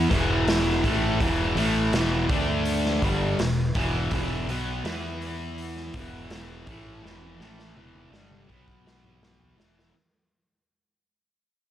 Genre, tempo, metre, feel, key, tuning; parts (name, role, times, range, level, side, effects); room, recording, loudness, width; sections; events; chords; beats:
blues rock power trio and southern rock; 82 BPM; 4/4; straight; E minor; A4 = 440 Hz
fuzz guitar; riff; 0.0-9.9 s; E2 to E4; -26 LUFS; equal; distortion
growling fingered electric bass; bass; 0.0-9.9 s; E1 to E2; -31 LUFS; equal; overdrive
raw garage drum kit; drums; 0.1-9.9 s; hi-hat, kick drum, snare drum, toms; -29 LUFS; equal
little or no reverb; -22 LUFS; side -11 dB against mid
0.0-9.9 A section
fade-out 0.0-9.9; drum fill 7.0-9.9
0.0 E5; 2.3 D5; 3.0 Em; 8.5 B5; 9.6 E5
0.46 | 1.19 1.92 2.65 3.38 | 4.11 4.84 5.57 6.30 | 7.02 7.75 8.48 9.20